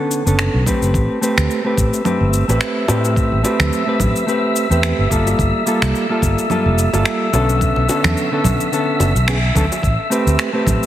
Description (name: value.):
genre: sunset chillout.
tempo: 108 BPM.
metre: 4/4.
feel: swing 56% on 16ths.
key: unclear.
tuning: A4 = 440 Hz.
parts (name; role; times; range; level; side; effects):
mellow electric guitar; accompaniment; 0.0-10.9 s; D3 to B4; -18 LUFS; equal; auto-pan, ping-pong delay.
electronic shaker, finger snaps and congas; drums; 0.1-10.9 s; none; -22 LUFS; right 1 dB; none.
fretless electric bass; bass; 0.3-10.8 s; F1 to A2; -17 LUFS; equal; tube saturation.
electronic kick drum; drums; 0.7-10.8 s; none; -20 LUFS; equal; none.
wind-like tuned noise texture; texture; 1.7-10.9 s; E5 to E6; -23 LUFS; equal; built-in reverb.
bongos; percussion; 2.5-9.8 s; none; -26 LUFS; equal; none.
room: moderate concert hall reverb, RT60 2.1 s.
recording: heavily compressed radio sound, multiband compression.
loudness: -14 LUFS.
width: side -12 dB against mid.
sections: 0.0-9.8 A section; 9.8-10.9 B section.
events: band accent 9.3.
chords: 0.0 Bm9; 0.9 Am9; 5.1 Gm9; 7.6 Bm9; 9.8 Am9.